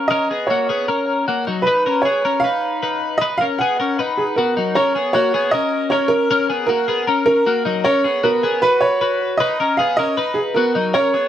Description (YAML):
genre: indie pop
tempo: 155 BPM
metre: 4/4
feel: straight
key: F# major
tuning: A4 = 441 Hz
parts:
  - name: twelve-string electric guitar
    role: arpeggios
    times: 0.0-11.3 s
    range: F#3 to Cb5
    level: -19 LUFS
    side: left 4 dB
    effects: lush chorus
  - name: warm upright piano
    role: melody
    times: 0.1-11.3 s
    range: G#4 to F#5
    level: -18 LUFS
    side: right 2 dB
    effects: none
room: moderate club reverb, RT60 0.7 s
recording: none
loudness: -16 LUFS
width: side -10 dB against mid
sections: 0.0-4.8 A section; 4.8-11.3 B section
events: none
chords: 0.1 D#m7; 1.7 Fm7b5; 3.2 B; 4.8 F#; 6.3 D#m7; 7.8 C#7sus4; 9.4 B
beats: | 0.11 0.50 0.89 1.27 | 1.66 2.05 2.43 2.82 | 3.21 3.60 3.98 4.37 | 4.76 5.14 5.53 5.92 | 6.30 6.69 7.08 7.46 | 7.85 8.23 8.62 9.01 | 9.39 9.78 10.17 10.55 | 10.94